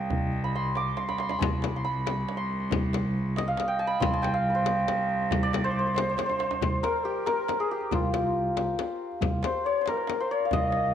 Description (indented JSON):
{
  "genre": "Persian modal ensemble",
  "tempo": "92 BPM (dotted quarters)",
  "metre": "6/8",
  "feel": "straight",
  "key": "C avaz esfahan",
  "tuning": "A4 = 440 Hz",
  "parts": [
    { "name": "santur", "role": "melody", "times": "0.0-10.9 s", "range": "F4 to D6", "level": "-28 LUFS", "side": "right 1 dB", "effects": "tape echo" },
    { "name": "clear cello", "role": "drone", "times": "0.0-6.7 s", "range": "C2", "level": "-34 LUFS", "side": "right 1 dB", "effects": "none" },
    { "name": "tombak", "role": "percussion", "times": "0.0-10.8 s", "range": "none", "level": "-35 LUFS", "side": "right 2 dB", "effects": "none" },
    { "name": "overdriven tine electric piano", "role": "bass", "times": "0.1-10.9 s", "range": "C2", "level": "-31 LUFS", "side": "equal", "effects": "fast tremolo" },
    { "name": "frame drum", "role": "percussion", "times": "1.4-10.6 s", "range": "none", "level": "-32 LUFS", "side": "left 10 dB", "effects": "none" },
    { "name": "mellow low ney", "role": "second line", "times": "6.8-10.9 s", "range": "F4 to Eb5", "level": "-31 LUFS", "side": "left 12 dB", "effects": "none" }
  ],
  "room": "moderate echo chamber reverb, RT60 1.7 s, studio reverb",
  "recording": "1960s-style stereo",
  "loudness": "-25 LUFS",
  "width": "side -9 dB against mid",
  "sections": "0.0-6.6 A section; 6.6-10.9 B section",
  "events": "drum fill 1.0-1.4, 6.2-6.6",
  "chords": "none"
}